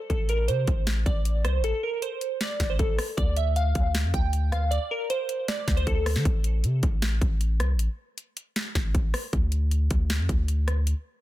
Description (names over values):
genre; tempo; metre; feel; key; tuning
hip hop, trap; 156 BPM; 4/4; half-time; A phrygian; A4 = 440 Hz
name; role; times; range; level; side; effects
glassy digital keys; melody; 0.1-6.1 s; A4 to G5; -29 LUFS; right 1 dB; chorus, ping-pong delay
long sustained 808-style bass; bass; 0.1-10.9 s; A1 to D3; -25 LUFS; equal; none
trap drum kit; drums; 0.1-11.0 s; hi-hat, kick drum, rim click, snare drum; -27 LUFS; equal; none
room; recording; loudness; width
digital ambience; dense, heavily limited modern master; -23 LUFS; side -15 dB against mid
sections
0.1-11.2 A section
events
none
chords
0.1 Am; 3.2 N.C.